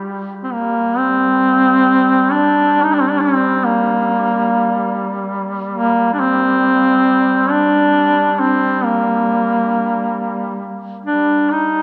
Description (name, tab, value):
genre	caucasian folk, Caucasian lament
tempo	68 BPM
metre	3/4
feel	rubato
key	G minor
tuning	A4 = 440 Hz
part	warm duduk	drone	0.0-11.8 s	G3	-25 LUFS	equal	none
part	clear duduk	melody	0.4-11.8 s	Bb3 to Eb4	-16 LUFS	equal	none
room	wet cathedral reverb, RT60 4.6 s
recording	none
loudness	-15 LUFS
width	mono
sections	0.5-11.8 A section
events	none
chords	none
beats	| 0.52 1.42 2.31 | 3.19 4.06 4.91 | 5.76 6.63 7.51 | 8.39 9.27 10.16 | 11.07